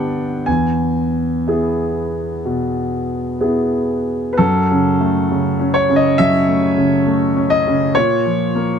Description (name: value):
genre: neoclassical minimalist piano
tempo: 59-69 BPM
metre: 4/4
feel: rubato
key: F# dorian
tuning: A4 = 440 Hz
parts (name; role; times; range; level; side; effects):
- warm concert grand piano; solo; 0.0-8.8 s; E2 to G#5; -14 LUFS; equal; none
room: light reverb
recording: close, detailed microphones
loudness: -14 LUFS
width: side -7 dB against mid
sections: 0.0-4.4 A section; 4.4-8.8 B section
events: none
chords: 0.5 E; 4.4 F#m; 7.9 A#m